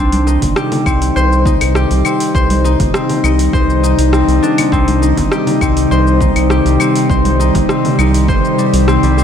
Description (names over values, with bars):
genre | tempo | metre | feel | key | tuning
organic downtempo | 101 BPM | 4/4 | straight | C minor | A4 = 440 Hz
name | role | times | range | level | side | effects
airy breathy pad | sustained chords | 0.0-9.2 s | C3 to Eb4 | -15 LUFS | equal | chorus, sidechain pumping, shimmer reverb
concert harp | arpeggios | 0.0-9.2 s | G3 to C5 | -16 LUFS | left 3 dB | analog delay, shimmer reverb
round analog bass | bass | 0.0-9.2 s | G1 to C2 | -14 LUFS | right 1 dB | tube saturation, sidechain pumping
deep house drum kit | drums | 0.1-9.2 s | claves, hi-hat, rim click, shaker | -22 LUFS | left 1 dB | overdrive
congas and bongos | percussion | 0.1-9.2 s | none | -25 LUFS | left 1 dB | none
electronic kick drum | drums | 0.4-8.4 s | none | -17 LUFS | right 1 dB | overdrive
room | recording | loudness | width
moderate plate reverb, RT60 3.0 s | dreamy mix soaked in reverb | -10 LUFS | side -8 dB against mid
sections
0.0-9.2 A section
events
none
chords
0.0 Cm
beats
0.56 1.16 1.75 | 2.35 2.94 3.53 4.13 | 4.72 5.32 5.91 6.50 | 7.10 7.69 8.29 8.88